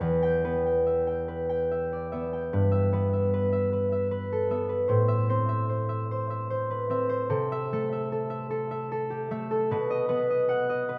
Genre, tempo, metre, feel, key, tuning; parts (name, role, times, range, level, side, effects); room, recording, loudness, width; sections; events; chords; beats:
classical, solo harp piece; 50 BPM (dotted quarters); 6/8; rubato; E minor; A4 = 439 Hz
concert harp; solo; 0.0-11.0 s; E2 to G5; -28 LUFS; equal
moderate stone room reverb, RT60 1.1 s; -28 LUFS; mono
0.0-11.0 A section
0.0 Em; 2.5 Em/G; 4.9 Am; 7.3 Am/C; 9.7 B
| 0.02 1.30 | 2.52 3.70 | 4.89 6.09 | 7.30 8.49 | 9.68 10.87